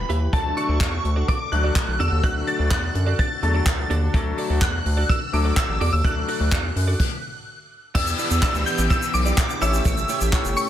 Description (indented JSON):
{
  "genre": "dance-pop",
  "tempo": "126 BPM",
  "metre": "4/4",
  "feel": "straight",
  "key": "unclear",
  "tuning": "A4 = 444 Hz",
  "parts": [
    { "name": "shimmering bell with halo", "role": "melody", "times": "0.0-10.7 s", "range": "A5 to A6", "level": "-26 LUFS", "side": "equal", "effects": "ensemble chorus, dub echo" },
    { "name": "clear baby grand piano", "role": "accompaniment", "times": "0.0-10.7 s", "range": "F#3 to D5", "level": "-30 LUFS", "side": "left 5 dB", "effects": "sidechain pumping" },
    { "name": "chorused pulse-width pad", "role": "sustained chords", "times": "0.0-10.7 s", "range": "D3 to B4", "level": "-32 LUFS", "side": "equal", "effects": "sidechain pumping" },
    { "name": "round analog bass", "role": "bass", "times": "0.0-10.5 s", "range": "G1 to F#2", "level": "-22 LUFS", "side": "equal", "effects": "sidechain pumping" },
    { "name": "direct-recorded clean electric guitar", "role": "riff", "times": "0.1-10.6 s", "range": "A3 to E5", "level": "-33 LUFS", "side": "right 6 dB", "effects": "analog chorus" },
    { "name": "jazz brush drum kit", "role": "drums", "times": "0.1-10.7 s", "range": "crash cymbal, handclaps, hi-hat, kick drum, shaker", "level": "-24 LUFS", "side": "equal", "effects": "soft clipping on snare" },
    { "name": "downlifter", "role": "sound effects", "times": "8.0-10.7 s", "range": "none", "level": "-33 LUFS", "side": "left 2 dB", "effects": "none" }
  ],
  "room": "light reverb, small room ambience",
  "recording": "dense, heavily limited modern master",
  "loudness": "-19 LUFS",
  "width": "side -11 dB against mid",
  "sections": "0.0-8.0 A section; 8.0-10.7 B section",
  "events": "stop 7.0-8.0",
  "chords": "0.3 D; 8.0 Em7; 9.6 A7"
}